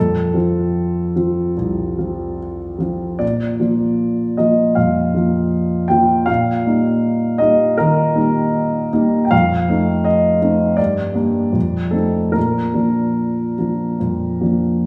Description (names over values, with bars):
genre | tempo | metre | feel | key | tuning
classical, romantic character piece for solo piano | 79 BPM | 4/4 | uneven beats, rubato | Bb major | A4 = 441 Hz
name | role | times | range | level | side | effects
warm grand piano | solo | 0.0-14.9 s | C2 to G5 | -17 LUFS | equal | none
room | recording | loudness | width
wet recital hall reverb, RT60 1.7 s | none | -17 LUFS | mono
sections
0.0-14.9 A section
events
none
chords
0.0 F; 3.2 Bb; 6.3 Eb/Bb; 9.3 F7; 10.8 Gm; 11.6 F7; 12.4 Bb